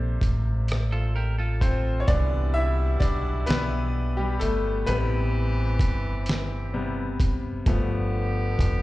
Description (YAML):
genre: slow six-eight R&B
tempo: 43 BPM (dotted quarters)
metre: 6/8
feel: straight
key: C major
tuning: A4 = 440 Hz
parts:
  - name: bright grand piano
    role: accompaniment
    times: 0.0-8.8 s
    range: C3 to E5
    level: -29 LUFS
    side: left 2 dB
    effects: none
  - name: deep dub fingered electric bass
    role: bass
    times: 0.0-8.8 s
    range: F1 to C2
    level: -25 LUFS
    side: equal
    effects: none
  - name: dusty soul sampler-style drum kit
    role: drums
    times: 0.2-8.8 s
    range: hi-hat, kick drum, rim click, snare drum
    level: -23 LUFS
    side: equal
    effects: overdrive
  - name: clean electric guitar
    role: second line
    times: 0.9-2.1 s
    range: F4 to Bb4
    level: -35 LUFS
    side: right 3 dB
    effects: tape echo
  - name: clear horn section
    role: stabs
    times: 2.1-8.8 s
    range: B2 to G4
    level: -34 LUFS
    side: equal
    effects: tape echo
room: little or no reverb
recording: played on a big sound system in a bare room, large studio reverb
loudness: -22 LUFS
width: side -17 dB against mid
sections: 0.0-2.1 A section; 2.1-8.8 B section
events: grand piano solo 2.1-8.8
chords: 0.0 Bbmaj9; 2.1 Cmaj9; 4.9 Am9; 7.7 G9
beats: 0.69 | 2.08 3.48 | 4.87 6.27 | 7.66